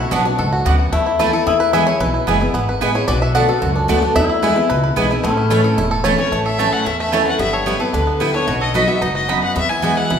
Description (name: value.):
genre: bluegrass.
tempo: 223 BPM.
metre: 4/4.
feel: straight.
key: A major.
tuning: A4 = 440 Hz.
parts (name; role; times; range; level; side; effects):
bluegrass banjo; melody; 0.0-10.2 s; A3 to F#5; -22 LUFS; right 2 dB; none.
lap resonator guitar; second line; 0.0-6.1 s; C#4 to F#4; -22 LUFS; left 6 dB; none.
picked steel-string acoustic guitar; accompaniment; 0.0-10.2 s; E2 to F#4; -19 LUFS; left 1 dB; none.
upright bass; bass; 0.0-10.2 s; E1 to E2; -22 LUFS; equal; none.
mandolin; stabs; 0.1-9.9 s; A3 to B5; -22 LUFS; right 5 dB; none.
clear fiddle; melody; 6.2-10.2 s; B4 to G#5; -21 LUFS; left 3 dB; none.
room: wet recital hall reverb, RT60 1.4 s.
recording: recorded in a church or concert hall.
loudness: -14 LUFS.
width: side -7 dB against mid.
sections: 0.0-6.3 A section; 6.3-10.2 B section.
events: five-string banjo solo 0.0-6.3.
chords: 0.0 Bm; 0.9 Esus4; 1.5 E; 3.1 Bm7; 4.2 E; 5.2 A; 7.4 G6; 8.5 B; 9.6 Eadd9.